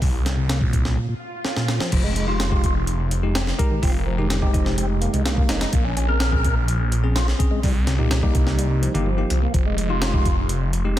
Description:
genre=breakbeat, breaks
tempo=126 BPM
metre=4/4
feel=straight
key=F minor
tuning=A4 = 440 Hz
part: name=tonewheel organ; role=riff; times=0.0-11.0 s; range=Bb2 to Bb4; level=-27 LUFS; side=equal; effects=overdrive, fast rotary speaker, tube saturation, vintage 12-bit sampler grit, ping-pong delay
part: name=phased detuned saw bass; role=bass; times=0.0-11.0 s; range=F1 to C2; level=-22 LUFS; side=equal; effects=phaser
part: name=breakbeat sampler-style drum kit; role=drums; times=0.0-11.0 s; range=crash cymbal, hi-hat, kick drum, snare drum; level=-22 LUFS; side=equal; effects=none
part: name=swell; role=sound effects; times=1.1-1.9 s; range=none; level=-33 LUFS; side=right 2 dB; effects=none
part: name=bell-like tine electric piano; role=stabs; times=2.3-11.0 s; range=Ab3 to Ab4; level=-28 LUFS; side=left 2 dB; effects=fast stereo tremolo, ping-pong delay
part: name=soft struck synth lead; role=melody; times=3.6-5.7 s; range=Eb4 to Bb4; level=-34 LUFS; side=right 1 dB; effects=chorus, telephone sound, ping-pong delay
room=little or no reverb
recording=dense, heavily limited modern master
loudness=-18 LUFS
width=side -13 dB against mid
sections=0.0-1.9 A section; 1.9-11.0 B section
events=break 1.0-1.9; swell 1.1-1.9; drum fill 1.4-1.9; drop 1.9-11.0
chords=0.0 C7(no3); 1.9 Fm9; 5.7 Bbm9; 7.6 Cm7; 9.5 Fm9

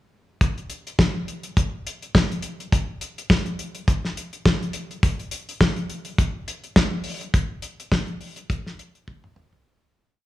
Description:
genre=disco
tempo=104 BPM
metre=4/4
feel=swing 56% on 16ths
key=none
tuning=none
part: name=damped 70s drum kit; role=drums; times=0.4-9.6 s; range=hi-hat, kick drum, snare drum, toms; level=-20 LUFS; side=equal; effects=none
room=moderate large studio reverb, RT60 1.4 s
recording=small room reverb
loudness=-21 LUFS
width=side -16 dB against mid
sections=0.4-9.7 breakdown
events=fade-out 7.3-9.7; drum fill 9.1-9.7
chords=none

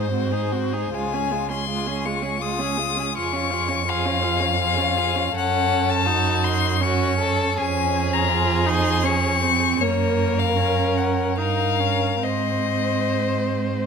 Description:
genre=classical, slow romantic movement for string quartet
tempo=68-84 BPM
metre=3/4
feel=rubato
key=Db major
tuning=A4 = 441 Hz
part: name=rich violin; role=melody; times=0.0-13.9 s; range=C5 to Eb6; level=-23 LUFS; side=left 10 dB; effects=none
part: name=warm violin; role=second line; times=0.0-13.9 s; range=F4 to C5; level=-28 LUFS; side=left 2 dB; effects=none
part: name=rich viola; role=accompaniment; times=0.0-13.9 s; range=Ab3 to F4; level=-26 LUFS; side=right 5 dB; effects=none
part: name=warm cello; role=bass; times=0.0-13.9 s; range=Db2 to Ab2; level=-25 LUFS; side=right 4 dB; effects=none
room=light reverb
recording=close, detailed microphones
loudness=-19 LUFS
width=side -6 dB against mid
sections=0.0-13.9 A section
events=none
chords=0.0 Ab7; 0.9 Db; 3.2 Db/F; 5.4 Gbm; 7.6 Db/F; 9.8 Gbmaj7; 11.4 Eb7/G; 12.2 Ab

